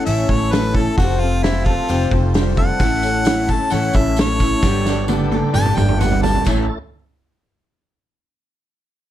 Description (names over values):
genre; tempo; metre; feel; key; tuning
folk rock and heartland rock; 131 BPM; 4/4; straight; A mixolydian; A4 = 440 Hz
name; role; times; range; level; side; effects
bright harmonica; melody; 0.0-6.5 s; E4 to A5; -22 LUFS; equal; none
picked twelve-string acoustic guitar; accompaniment; 0.0-6.7 s; A2 to A4; -24 LUFS; left 5 dB; none
tonewheel organ; sustained chords; 0.0-6.8 s; A3 to A4; -34 LUFS; right 1 dB; none
electric guitar through a small old amp; riff; 0.0-6.7 s; A2 to A4; -23 LUFS; right 1 dB; analog chorus
upright bass; bass; 0.1-6.7 s; F1 to A1; -20 LUFS; equal; none
loose indie drum kit; drums; 0.1-6.6 s; crash cymbal, hi-hat, kick drum, snare drum, toms; -20 LUFS; equal; none
tambourine; percussion; 2.8-6.7 s; none; -37 LUFS; right 11 dB; none
room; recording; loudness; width
little or no reverb; none; -15 LUFS; side -12 dB against mid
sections
0.0-6.5 A section; 6.5-8.3 B section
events
harmonica solo 0.0-6.5; drum fill 4.6-6.5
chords
0.0 A; 1.0 Fadd9; 2.8 A; 4.6 Gadd9; 6.5 A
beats
0.06 0.52 | 0.98 1.44 1.90 2.35 | 2.81 3.27 3.73 4.18 | 4.64 5.10 5.55 6.01 | 6.47